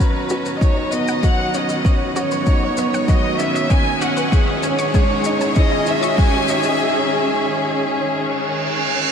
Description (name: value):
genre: piano and strings electronica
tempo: 97 BPM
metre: 4/4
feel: straight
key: unclear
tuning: A4 = 438 Hz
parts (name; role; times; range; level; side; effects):
- warm chamber violin section; melody; 0.0-6.8 s; B4 to G#5; -22 LUFS; left 1 dB; diffuse ambient delay
- muted studio string section; sustained chords; 0.0-9.1 s; D#3 to A#5; -23 LUFS; equal; none
- analog pluck; arpeggios; 0.0-6.7 s; F#4 to C#6; -29 LUFS; left 2 dB; none
- clear concert grand piano; riff; 0.0-9.1 s; F#3 to G#4; -23 LUFS; right 1 dB; diffuse ambient delay
- round analog bass; bass; 0.0-6.8 s; none; barely audible; none; none
- shaker; drums; 0.0-6.8 s; none; -35 LUFS; left 5 dB; none
- riser and reverse cymbal; sound effects; 0.9-9.1 s; none; -27 LUFS; right 2 dB; none
- electronic kick drum; drums; 0.6-6.3 s; none; -16 LUFS; equal; overdrive
room: wet huge ambient reverb, RT60 7.2 s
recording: dreamy mix soaked in reverb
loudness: -16 LUFS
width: side -7 dB against mid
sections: 0.0-9.1 A section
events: build-up 0.0-9.1; riser 0.9-6.8; break 6.8-9.1; reverse cymbal 8.3-9.1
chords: 0.0 Badd9; 4.3 C#sus2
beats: 0.00 0.62 1.24 | 1.85 2.47 3.09 3.71 | 4.33 4.95 5.57 6.18 | 6.80 7.42 8.04 8.66